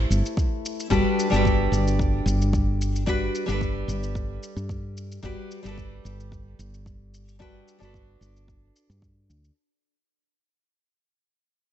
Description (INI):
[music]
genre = sunset chillout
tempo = 111 BPM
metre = 4/4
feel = straight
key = G major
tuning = A4 = 440 Hz
[part]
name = nylon-string guitar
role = accompaniment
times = 0.0-9.5 s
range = G3 to C5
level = -27 LUFS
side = left 1 dB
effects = auto-pan, ping-pong delay
[part]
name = woody fretless electric bass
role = bass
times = 0.0-9.5 s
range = G1 to G2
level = -26 LUFS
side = equal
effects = none
[part]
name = shaker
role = drums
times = 0.1-9.5 s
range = none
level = -38 LUFS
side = left 1 dB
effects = studio reverb
[part]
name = electronic kick drum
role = drums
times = 0.4-9.1 s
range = none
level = -28 LUFS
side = equal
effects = studio reverb
[sound]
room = light reverb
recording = nothing above 8.0 kHz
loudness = -22 LUFS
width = side -11 dB against mid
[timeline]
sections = 0.0-9.6 A section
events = fade-out 0.0-9.6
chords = 0.0 Am7; 0.9 Gmaj7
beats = 0.37 | 0.91 1.45 1.99 2.53 | 3.07 3.61 4.15 4.69 | 5.24 5.78 6.32 6.86 | 7.40 7.94 8.48 9.02